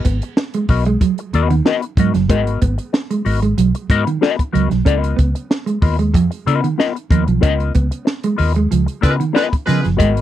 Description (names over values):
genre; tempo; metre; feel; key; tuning
funk; 94 BPM; 4/4; straight; unclear; A4 = 440 Hz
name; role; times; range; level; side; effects
mellow electric guitar; accompaniment; 0.0-10.2 s; B3 to D#5; -19 LUFS; left 9 dB; wah
mellow electric guitar; riff; 0.0-10.2 s; D#3 to C#4; -20 LUFS; right 6 dB; spring reverb
compact cocktail drum kit; drums; 0.0-10.2 s; hi-hat, kick drum, snare drum; -17 LUFS; equal; none
vintage muted fingered electric bass; bass; 0.1-10.2 s; F#1 to C#3; -17 LUFS; equal; tube saturation
clear horn section; second line; 9.0-9.9 s; E#4 to B4; -21 LUFS; right 3 dB; none
room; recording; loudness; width
little or no reverb; dry, close 1970s-style studio recording; -14 LUFS; side -12 dB against mid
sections
0.0-10.2 A section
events
band accent 7.4-10.0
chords
0.0 G#m9; 4.9 C#13